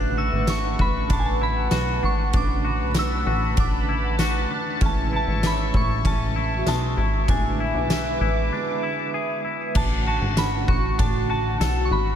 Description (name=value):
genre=dream pop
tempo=97 BPM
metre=4/4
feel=straight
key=unclear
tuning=A4 = 440 Hz
part: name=soft synth bell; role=melody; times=0.0-12.2 s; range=G#5 to F#6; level=-30 LUFS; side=equal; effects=chorus, tape echo
part: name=mellow electric guitar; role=accompaniment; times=0.0-12.2 s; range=A2 to F#4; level=-32 LUFS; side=right 5 dB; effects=harmonic tremolo, analog chorus
part: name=phased analog pad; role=sustained chords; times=0.0-12.2 s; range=F#4 to D6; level=-29 LUFS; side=equal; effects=phaser, chorus
part: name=twangy electric guitar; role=arpeggios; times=0.0-12.2 s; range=G#3 to A4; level=-30 LUFS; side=left 4 dB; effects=wide subtle chorus, tape echo
part: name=plucky analog bass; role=bass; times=0.0-12.2 s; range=G#1 to B1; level=-25 LUFS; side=equal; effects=none
part: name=large celesta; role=texture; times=0.0-9.3 s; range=F#4 to A5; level=-39 LUFS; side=left 6 dB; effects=stereo widening, tape echo
part: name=oversized low-tuned drum kit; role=drums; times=0.5-11.8 s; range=crash cymbal, kick drum, ride cymbal, snare drum, tambourine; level=-26 LUFS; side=equal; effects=none
room=studio reverb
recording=none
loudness=-20 LUFS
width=side -9 dB against mid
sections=0.0-9.8 A section; 9.8-12.2 A section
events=break 8.5-9.8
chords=0.0 Dmaj7; 4.8 Amaj7; 7.3 E7/A; 9.8 Dmaj7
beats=0.48 1.10 1.72 | 2.34 2.96 3.57 4.19 | 4.81 5.43 6.05 6.67 | 7.29 7.90 8.52 9.14 | 9.76 10.38 11.00 11.62